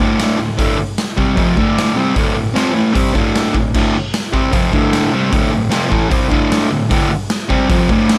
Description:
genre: garage rock duo or trio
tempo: 152 BPM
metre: 4/4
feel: straight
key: unclear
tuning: A4 = 441 Hz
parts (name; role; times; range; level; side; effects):
- fuzz guitar; riff; 0.0-8.2 s; D2 to C4; -17 LUFS; equal; distortion
- raw garage drum kit; drums; 0.0-8.2 s; crash cymbal, hi-hat, kick drum, snare drum; -20 LUFS; equal; none
room: moderate studio reverb, RT60 0.6 s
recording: none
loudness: -15 LUFS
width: mono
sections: 0.0-8.2 A section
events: none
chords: 0.0 D5

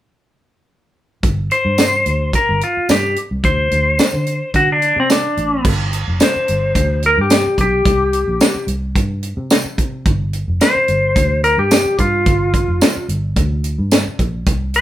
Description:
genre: straight-eighth soul blues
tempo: 109 BPM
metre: 4/4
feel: swing 54% on 16ths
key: G minor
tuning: A4 = 442 Hz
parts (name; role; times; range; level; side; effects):
- vintage muted fingered electric bass; bass; 1.2-14.8 s; F1 to D3; -20 LUFS; equal; none
- tight funk drum kit; drums; 1.2-14.8 s; crash cymbal, hi-hat, kick drum, snare drum, tambourine; -16 LUFS; equal; none
- clean lap steel guitar; melody; 1.5-14.8 s; C4 to C5; -16 LUFS; left 1 dB; none
room: moderate studio reverb, RT60 0.6 s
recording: band playing live in one room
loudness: -13 LUFS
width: side -13 dB against mid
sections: 1.2-5.6 A section; 5.6-14.8 B section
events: none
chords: 1.2 G5; 3.4 D5; 5.6 G5; 7.9 C5; 10.1 G7(no3)

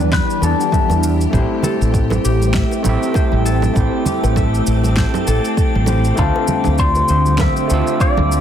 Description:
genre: sunset chillout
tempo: 99 BPM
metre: 4/4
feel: swing 57% on 16ths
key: A minor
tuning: A4 = 436 Hz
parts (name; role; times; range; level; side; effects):
- electric guitar with an envelope filter; melody; 0.0-1.0, 6.2-8.4 s; A4 to E5; -20 LUFS; left 3 dB; phaser, tape echo
- overdriven tine electric piano; accompaniment; 0.0-8.4 s; G3 to E6; -22 LUFS; moving between left 5 dB and right 5 dB; auto-pan, ping-pong delay
- soft string machine; sustained chords; 0.0-8.4 s; D3 to A4; -23 LUFS; equal; phaser, ensemble chorus
- concert harp; arpeggios; 0.0-8.4 s; G4 to F5; -28 LUFS; left 2 dB; ping-pong delay
- mellow fretless electric bass; bass; 0.0-8.4 s; A1 to E2; -16 LUFS; equal; ensemble chorus
- electronic shaker, snare drum and congas; drums; 0.0-8.4 s; none; -24 LUFS; right 3 dB; none
- electronic kick drum; drums; 0.1-8.1 s; none; -18 LUFS; equal; none
- bongos and congas; percussion; 0.4-8.3 s; none; -26 LUFS; right 1 dB; none
- drifting glass-harmonics texture; texture; 1.8-8.4 s; G4 to G5; -29 LUFS; equal; chorus, built-in reverb
room: light reverb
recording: dense, heavily limited modern master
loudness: -13 LUFS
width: side -9 dB against mid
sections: 0.0-8.4 A section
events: none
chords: 0.0 Em7; 1.3 Am7; 6.2 Dm7

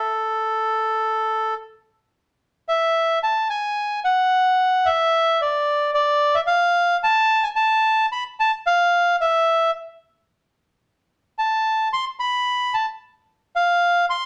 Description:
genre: tango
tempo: 110 BPM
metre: 4/4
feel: rubato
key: A harmonic minor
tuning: A4 = 440 Hz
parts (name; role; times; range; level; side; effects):
- bandoneon; solo; 0.0-14.3 s; A4 to C6; -20 LUFS; equal; none
room: moderate studio reverb, RT60 0.7 s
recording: none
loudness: -20 LUFS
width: mono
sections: 0.0-2.1 A section; 2.1-14.3 B section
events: none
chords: none

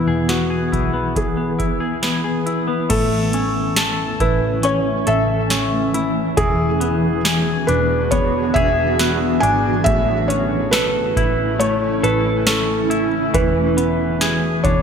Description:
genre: dream pop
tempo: 69 BPM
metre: 4/4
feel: straight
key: A major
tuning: A4 = 439 Hz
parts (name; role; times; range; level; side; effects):
- felt-muted upright piano; melody; 0.0-14.8 s; E4 to G#5; -22 LUFS; right 1 dB; digital delay
- granular cloud pad; sustained chords; 0.0-14.8 s; E3 to G#4; -22 LUFS; right 1 dB; built-in reverb, analog chorus
- semi-hollow electric guitar; arpeggios; 0.0-14.8 s; A2 to A4; -21 LUFS; left 3 dB; lush chorus, digital delay
- vintage muted picked electric bass; bass; 0.0-14.8 s; E1 to B1; -25 LUFS; right 1 dB; none
- booming analog drum machine; drums; 0.3-14.8 s; crash cymbal, hi-hat, kick drum, snare drum, tambourine; -22 LUFS; right 1 dB; none
room: moderate lush hall reverb, RT60 2.8 s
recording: bright 1980s-style digital production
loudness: -16 LUFS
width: side -7 dB against mid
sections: 0.0-2.9 A section; 2.9-14.8 B section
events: none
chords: 0.0 E; 2.9 A; 6.4 E7; 9.9 A; 13.3 E7

